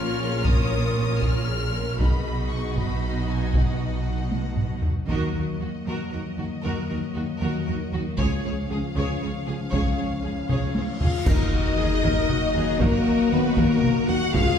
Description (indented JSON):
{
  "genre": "cinematic, epic orchestral film score",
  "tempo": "78 BPM (dotted quarters)",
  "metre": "6/8",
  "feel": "straight",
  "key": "Eb minor",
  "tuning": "A4 = 441 Hz",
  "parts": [
    { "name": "warm symphonic violin section", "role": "melody", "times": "0.0-14.6 s", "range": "Bb4 to F6", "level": "-36 LUFS", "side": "left 3 dB", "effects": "none" },
    { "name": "warm symphonic violin section", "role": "second line", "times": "0.0-14.6 s", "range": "F#4 to Gb5", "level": "-33 LUFS", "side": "left 1 dB", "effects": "none" },
    { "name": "warm studio viola section", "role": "accompaniment", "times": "0.0-14.6 s", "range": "B3 to Bb4", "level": "-35 LUFS", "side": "right 1 dB", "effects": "none" },
    { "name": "mellow French horn section", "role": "sustained chords", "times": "0.0-14.6 s", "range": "F3 to Bb4", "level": "-28 LUFS", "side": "left 4 dB", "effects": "none" },
    { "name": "warm studio double bass section", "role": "bass", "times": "0.0-14.4 s", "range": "Bb1 to Eb2", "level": "-30 LUFS", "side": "right 1 dB", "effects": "none" },
    { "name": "warm symphonic cello section", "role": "bass", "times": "0.0-14.4 s", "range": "Bb2 to Eb3", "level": "-31 LUFS", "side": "right 2 dB", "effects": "none" },
    { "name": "taiko ensemble", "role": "drums", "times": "0.4-14.6 s", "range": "none", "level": "-26 LUFS", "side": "equal", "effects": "none" },
    { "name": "dark tuba", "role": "bass", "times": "5.1-14.4 s", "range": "Db2 to Eb2", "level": "-31 LUFS", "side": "right 1 dB", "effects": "none" },
    { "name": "timpani", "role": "percussion", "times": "5.1-5.8 s", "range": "none", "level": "barely audible", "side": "none", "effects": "none" },
    { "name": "cymbal swell, clash cymbals and concert bass drum", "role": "percussion", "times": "8.2-12.3 s", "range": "none", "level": "-31 LUFS", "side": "equal", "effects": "none" },
    { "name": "reverse cymbal and impact", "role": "sound effects", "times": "10.9-12.8 s", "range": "none", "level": "-35 LUFS", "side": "equal", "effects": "none" },
    { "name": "clear studio string section", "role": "sustained chords", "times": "11.3-14.6 s", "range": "Db4 to Ab5", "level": "-35 LUFS", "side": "right 1 dB", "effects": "none" },
    { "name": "warm trombone section", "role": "sustained chords", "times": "11.3-14.6 s", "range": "F3 to Db4", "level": "-33 LUFS", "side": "equal", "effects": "none" }
  ],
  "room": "wet scoring stage reverb, RT60 1.5 s",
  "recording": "heard from further back in the room",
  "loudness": "-22 LUFS",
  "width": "side -8 dB against mid",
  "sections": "0.0-5.1 A section; 5.1-11.3 B section; 11.3-14.6 C section",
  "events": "drum fill 4.3-5.1, 10.5-11.3; band accent 5.1-5.6, 11.3-11.8; reverse cymbal 10.9-11.3; impact 11.3-12.8",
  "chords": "0.0 Bbm; 2.0 B; 5.1 Ebm; 8.2 Db; 11.3 Ebm"
}